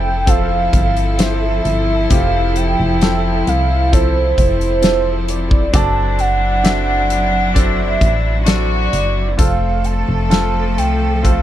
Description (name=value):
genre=pop ballad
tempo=66 BPM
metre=4/4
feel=straight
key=F major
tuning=A4 = 440 Hz
part: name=warm velvety synth lead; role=melody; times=0.0-11.4 s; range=C5 to A5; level=-20 LUFS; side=right 3 dB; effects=chorus
part: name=rich studio cello section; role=second line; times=0.0-11.4 s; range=A3 to F#4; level=-22 LUFS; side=left 4 dB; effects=none
part: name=clear baby grand piano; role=accompaniment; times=0.0-11.4 s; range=F3 to E5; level=-24 LUFS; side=equal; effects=none
part: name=clear studio string section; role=sustained chords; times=0.0-11.4 s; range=F3 to A4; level=-25 LUFS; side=right 1 dB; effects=none
part: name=solid FM bass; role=bass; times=0.0-11.4 s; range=F1 to C2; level=-18 LUFS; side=equal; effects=none
part: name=impact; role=sound effects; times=0.0-2.1 s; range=none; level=barely audible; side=none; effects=none
part: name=natural country drum kit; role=drums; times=0.3-11.4 s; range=hi-hat, kick drum, snare drum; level=-15 LUFS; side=equal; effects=none
room=studio reverb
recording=dark, warm production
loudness=-13 LUFS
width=side -12 dB against mid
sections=0.0-11.4 A section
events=impact 0.0-2.1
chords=0.0 F; 5.7 D7/F#; 9.4 F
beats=0.27 1.19 | 2.10 3.02 3.93 4.83 | 5.74 6.65 7.56 8.47 | 9.39 10.32 11.24